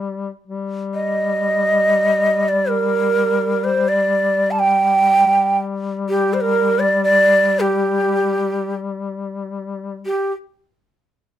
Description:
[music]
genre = Turkish makam ensemble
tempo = free time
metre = none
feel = none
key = G makam nihavent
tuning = A4 = 440 Hz
[part]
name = mellow duduk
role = drone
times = 0.0-10.1 s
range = G3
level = -23 LUFS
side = left 5 dB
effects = none
[part]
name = breathy ney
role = melody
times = 0.9-10.3 s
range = G4 to A5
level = -15 LUFS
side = right 2 dB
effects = none
[sound]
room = moderate small room reverb, RT60 0.5 s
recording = minimal, uncompressed stereo recording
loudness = -15 LUFS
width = side -11 dB against mid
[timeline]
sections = 0.5-10.0 A section; 10.0-11.4 B section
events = none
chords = none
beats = free time

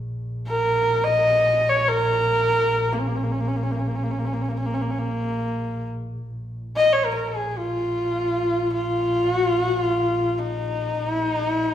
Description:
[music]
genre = mongolian traditional, Mongolian folk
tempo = free time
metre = none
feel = none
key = Bb yu mode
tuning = A4 = 436 Hz
[part]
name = dark double bass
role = drone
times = 0.0-11.7 s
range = Bb1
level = -28 LUFS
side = equal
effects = none
[part]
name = rich horsehead fiddle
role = melody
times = 0.5-11.7 s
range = Bb3 to Eb5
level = -21 LUFS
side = equal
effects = none
[sound]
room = wet large studio reverb, RT60 1.3 s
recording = band playing live in one room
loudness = -20 LUFS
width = side -10 dB against mid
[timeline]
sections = 0.0-6.3 A section; 6.3-11.7 A section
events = none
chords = none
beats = free time

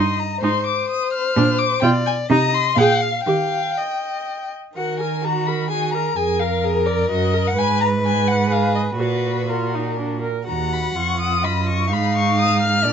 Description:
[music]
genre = quick classical-period movement for string quartet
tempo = 119-131 BPM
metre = 3/4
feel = rubato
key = Eb major, Eb minor from 4.8 s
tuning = A4 = 440 Hz
[part]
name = warm violin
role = melody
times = 0.0-12.9 s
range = Bb4 to F6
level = -23 LUFS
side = left 6 dB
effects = none
[part]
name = warm violin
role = second line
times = 0.0-12.9 s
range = Gb4 to G5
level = -24 LUFS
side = left 3 dB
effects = none
[part]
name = warm viola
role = accompaniment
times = 0.0-12.9 s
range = D4 to Cb5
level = -24 LUFS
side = right 3 dB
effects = none
[part]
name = rich cello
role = bass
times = 0.0-12.9 s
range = Eb2 to Eb3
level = -22 LUFS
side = right 4 dB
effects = none
[sound]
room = light reverb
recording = nothing above 7.7 kHz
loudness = -17 LUFS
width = side -7 dB against mid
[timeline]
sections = 0.0-4.8 A section; 4.8-12.9 B section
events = none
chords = 0.4 Ab6; 1.4 Bb; 1.8 G7/B (rootless); 2.3 Cm; 2.8 Bb5; 3.3 Eb; 4.8 Ebm; 6.2 Bb5/F; 7.1 Ebm/Gb; 7.6 Abm; 9.0 Ebm/Bb; 10.0 Bb; 10.5 Ebm; 11.4 Ebm/Gb; 11.9 Abm6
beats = | 0.44 0.91 1.37 | 1.84 2.31 2.78 | 3.27 3.77 4.27 | 4.77 5.25 5.72 | 6.19 6.66 7.12 | 7.58 8.04 8.51 | 9.00 9.49 9.98 | 10.48 10.96 11.44 | 11.92 12.39 12.85

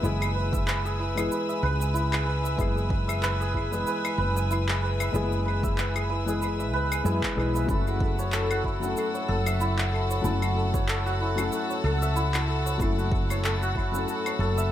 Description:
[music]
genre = organic downtempo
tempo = 94 BPM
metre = 4/4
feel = swing 56% on 16ths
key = F# minor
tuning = A4 = 440 Hz
[part]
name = felt-muted upright piano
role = accompaniment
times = 0.0-14.7 s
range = E3 to A4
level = -33 LUFS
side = left 4 dB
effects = sidechain pumping, low-pass filter, tape echo
[part]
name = bright chamber string section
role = sustained chords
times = 0.0-14.7 s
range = A4 to E6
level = -36 LUFS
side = left 2 dB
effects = sidechain pumping
[part]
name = santur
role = arpeggios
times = 0.0-14.7 s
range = E4 to G#5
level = -29 LUFS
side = right 1 dB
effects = tape echo
[part]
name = woody fretless electric bass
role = bass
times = 0.0-14.7 s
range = F#1 to F#2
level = -27 LUFS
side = equal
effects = sidechain pumping
[part]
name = electronic cabasa, claves and handclaps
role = drums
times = 0.0-14.7 s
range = none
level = -33 LUFS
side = left 1 dB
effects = tape echo
[part]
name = electronic kick drum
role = drums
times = 0.5-13.9 s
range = none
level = -29 LUFS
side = equal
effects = none
[sound]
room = moderate spring reverb, RT60 2.5 s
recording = echo-heavy mix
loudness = -24 LUFS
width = side -11 dB against mid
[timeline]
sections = 0.0-14.7 A section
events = none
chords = 0.0 E/F#; 7.7 F#m7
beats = | 0.03 0.67 1.31 1.95 | 2.59 3.22 3.86 4.50 | 5.14 5.78 6.42 7.05 | 7.69 8.33 8.97 9.61 | 10.24 10.88 11.52 12.16 | 12.80 13.44 14.07 14.71

